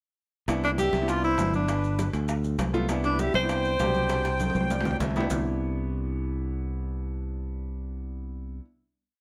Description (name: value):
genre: Afro-Cuban jazz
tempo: 199 BPM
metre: 4/4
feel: straight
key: C major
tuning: A4 = 440 Hz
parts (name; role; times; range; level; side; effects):
- warm grand piano; accompaniment; 0.5-8.6 s; B2 to G5; -35 LUFS; equal; none
- modern bright fingered electric bass; bass; 0.5-8.6 s; G1 to D2; -32 LUFS; equal; none
- bongos; percussion; 0.5-5.4 s; none; -40 LUFS; equal; none
- congas; percussion; 0.5-5.4 s; none; -36 LUFS; equal; none
- maracas; percussion; 0.5-5.4 s; none; -48 LUFS; equal; none
- timbales; percussion; 0.5-5.4 s; none; -39 LUFS; equal; none
- warm tenor saxophone; melody; 0.6-5.0 s; D4 to C5; -29 LUFS; equal; none
- accordion; second line; 0.6-5.0 s; B4 to G5; -36 LUFS; equal; light tremolo tuning
room: light reverb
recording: none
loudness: -27 LUFS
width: mono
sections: 0.5-5.3 A section; 5.3-7.7 final chord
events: drum fill 4.1-5.3; grand piano fill 4.4-5.3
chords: 0.5 Cmaj9; 1.7 G; 2.9 Cmaj9